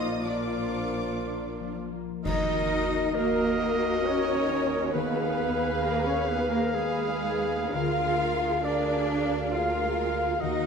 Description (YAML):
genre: classical, slow romantic movement for symphony orchestra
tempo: 66 BPM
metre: 3/4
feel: uneven beats, rubato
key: Eb minor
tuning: A4 = 440 Hz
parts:
  - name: warm symphonic violin section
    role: melody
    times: 0.0-10.7 s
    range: Eb5 to Eb6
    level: -39 LUFS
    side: left 4 dB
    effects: none
  - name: hollow concert flute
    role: second line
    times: 0.0-10.7 s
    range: Ab4 to F5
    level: -36 LUFS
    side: equal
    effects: none
  - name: rich studio violin section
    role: second line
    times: 0.0-10.7 s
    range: Ab4 to F5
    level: -36 LUFS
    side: left 4 dB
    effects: none
  - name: warm oboe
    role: second line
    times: 0.0-10.7 s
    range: Ab4 to F5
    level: -36 LUFS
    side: equal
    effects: none
  - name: clear symphonic viola section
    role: accompaniment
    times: 0.0-10.7 s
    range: Bb3 to Cb5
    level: -33 LUFS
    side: right 1 dB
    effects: none
  - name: dark French horn section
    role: sustained chords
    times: 0.0-10.7 s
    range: F3 to Cb5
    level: -35 LUFS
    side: left 4 dB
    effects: none
  - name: concert harp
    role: arpeggios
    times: 0.0-10.7 s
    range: Bb2 to Eb5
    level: -36 LUFS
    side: left 8 dB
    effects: none
  - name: clear trumpet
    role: stabs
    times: 0.0-10.7 s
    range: F4 to Gb5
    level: -34 LUFS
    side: equal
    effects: none
  - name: rich symphonic cello section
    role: bass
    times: 0.0-10.7 s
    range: Ab3 to F4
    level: -31 LUFS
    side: right 3 dB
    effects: none
  - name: rich symphonic double bass section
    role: bass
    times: 0.0-10.7 s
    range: Bb1 to Eb2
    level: -35 LUFS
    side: right 4 dB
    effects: none
  - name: clash cymbals and concert bass drum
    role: percussion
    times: 2.3-4.0 s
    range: none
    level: -37 LUFS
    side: equal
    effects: none
room: wet concert hall reverb, RT60 1.9 s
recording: none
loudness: -25 LUFS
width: side -6 dB against mid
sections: 0.0-2.2 A section; 2.2-10.7 B section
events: band accent 2.2-3.2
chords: 0.0 Bb; 2.2 Ebm; 4.9 Fm7b5/Eb; 7.7 Bb7/D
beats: 0.26 1.26 | 2.25 3.16 4.05 | 4.94 5.82 6.74 | 7.73 8.64 9.53 | 10.41